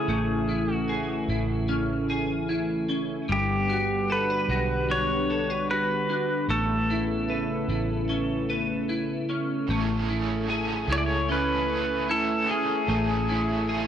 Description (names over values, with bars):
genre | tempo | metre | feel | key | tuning
dream pop | 75 BPM | 4/4 | straight | A major | A4 = 443 Hz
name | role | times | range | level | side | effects
pedal steel guitar | melody | 0.0-13.9 s | G4 to D5 | -28 LUFS | equal | tape echo
lush unison pad | sustained chords | 0.0-13.9 s | C#3 to C#6 | -30 LUFS | equal | chorus
clean electric guitar | arpeggios | 0.0-13.9 s | G3 to B4 | -28 LUFS | left 1 dB | analog chorus, tape echo
vintage muted fingered electric bass | bass | 0.1-13.9 s | G1 to C#2 | -31 LUFS | equal | none
overdriven semi-hollow guitar | accompaniment | 9.7-13.9 s | A2 to G#4 | -32 LUFS | right 5 dB | tremolo, lush chorus
room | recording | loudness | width
little or no reverb | dry, gritty hardware recording | -24 LUFS | side -9 dB against mid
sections
0.0-9.7 A section; 9.7-13.9 A section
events
none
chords
0.0 Amaj7; 3.3 Gmaj7; 6.5 Aadd9; 9.7 Amaj7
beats
| 0.09 0.89 1.69 2.49 | 3.29 4.09 4.89 5.69 | 6.49 7.29 8.09 8.89 | 9.69 10.49 11.29 12.09 | 12.89 13.69